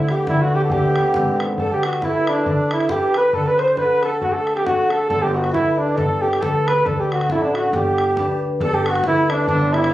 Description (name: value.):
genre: celtic folk, Celtic polka.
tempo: 137 BPM.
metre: 2/4.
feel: swing 58% on 8ths.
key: G major.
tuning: A4 = 438 Hz.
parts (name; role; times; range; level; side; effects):
mellow flugelhorn; melody; 0.0-9.9 s; D4 to C5; -19 LUFS; right 1 dB; plate reverb.
musette accordion; second line; 0.0-9.9 s; D4 to C5; -28 LUFS; equal; none.
open-back banjo; second line; 0.0-9.9 s; D4 to C5; -30 LUFS; right 1 dB; none.
concert harp; accompaniment; 0.0-9.9 s; D3 to B4; -22 LUFS; left 1 dB; none.
upright bass; bass; 0.0-1.6, 5.1-9.9 s; G1 to D2; -24 LUFS; equal; none.
bodhran; percussion; 0.1-9.9 s; none; -30 LUFS; equal; none.
room: moderate studio reverb, RT60 0.5 s.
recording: recorded on a phone in the room, studio reverb.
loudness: -16 LUFS.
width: side -14 dB against mid.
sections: 0.0-1.6 A section; 1.6-8.6 B section; 8.6-9.9 B section.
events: none.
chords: 0.0 G/D; 1.6 Gadd9; 3.3 D; 5.1 Gadd9; 6.9 D; 7.7 G; 8.6 Gadd9.